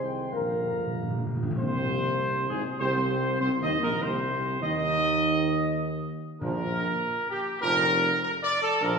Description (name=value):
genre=classical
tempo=99 BPM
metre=4/4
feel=straight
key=unclear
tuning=A4 = 441 Hz
part: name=dark trumpet section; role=melody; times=0.0-9.0 s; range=G4 to C6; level=-27 LUFS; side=equal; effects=none
part: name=mellow French horn section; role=sustained chords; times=0.0-9.0 s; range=Ab3 to C5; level=-34 LUFS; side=equal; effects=none
part: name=mellow trombone section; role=sustained chords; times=0.0-9.0 s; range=Ab2 to Eb4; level=-34 LUFS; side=right 2 dB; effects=none
part: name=warm tuba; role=bass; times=0.0-9.0 s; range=F1 to Eb2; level=-31 LUFS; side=right 2 dB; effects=none
part: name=timpani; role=percussion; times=0.3-1.6, 6.4-7.3 s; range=Bb2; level=-33 LUFS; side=equal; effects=none
room=wet recital hall reverb, RT60 1.6 s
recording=recorded in a church or concert hall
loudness=-24 LUFS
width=side -5 dB against mid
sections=0.0-1.6 A section; 1.6-9.0 B section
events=timpani fill 0.3-1.6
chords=0.3 Bb; 1.6 Ab (rootless); 6.4 Bb